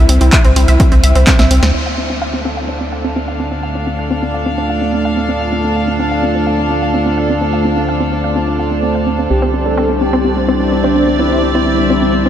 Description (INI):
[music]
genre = melodic techno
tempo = 127 BPM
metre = 4/4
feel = straight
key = D minor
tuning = A4 = 440 Hz
[part]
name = wide unison lead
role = melody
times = 0.0-1.6, 9.3-12.2 s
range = C4 to A4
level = -20 LUFS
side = right 1 dB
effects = sidechain pumping, diffuse ambient delay
[part]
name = analog pluck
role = arpeggios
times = 0.0-12.3 s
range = C4 to F5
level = -19 LUFS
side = equal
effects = chorus, sidechain pumping, diffuse ambient delay
[part]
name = round analog bass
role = bass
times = 0.0-12.3 s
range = C2 to D2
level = -17 LUFS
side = equal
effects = tube saturation, sidechain pumping
[part]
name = punchy analog drum machine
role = drums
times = 0.1-1.7 s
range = handclaps, hi-hat, snare drum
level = -20 LUFS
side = equal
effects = low-pass filter on hats, low-pass filter on snare, low-pass filter on room
[part]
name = electronic kick drum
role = drums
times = 0.3-1.4 s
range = none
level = -12 LUFS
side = equal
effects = none
[part]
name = warm analog pad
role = sustained chords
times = 1.7-12.3 s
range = G3 to C5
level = -18 LUFS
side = equal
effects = chorus, sidechain pumping
[part]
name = analog drone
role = drone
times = 2.5-12.3 s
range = D3 to D4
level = -24 LUFS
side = equal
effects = chorus, sidechain pumping
[part]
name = dark chamber string section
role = texture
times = 1.7-12.3 s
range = C4 to F5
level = -20 LUFS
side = equal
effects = sidechain pumping
[sound]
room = moderate huge ambient reverb, RT60 7.7 s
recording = dreamy mix soaked in reverb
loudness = -12 LUFS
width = side -10 dB against mid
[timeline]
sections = 0.0-1.7 A section; 1.7-12.3 B section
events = filter sweep on synth arpeggio sound 0.0-1.7; drum fill 1.3-1.7; band accent 1.6; filter sweep on analog synth pad 1.7-12.3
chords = 0.0 C; 1.7 Dm7; 9.3 Cadd9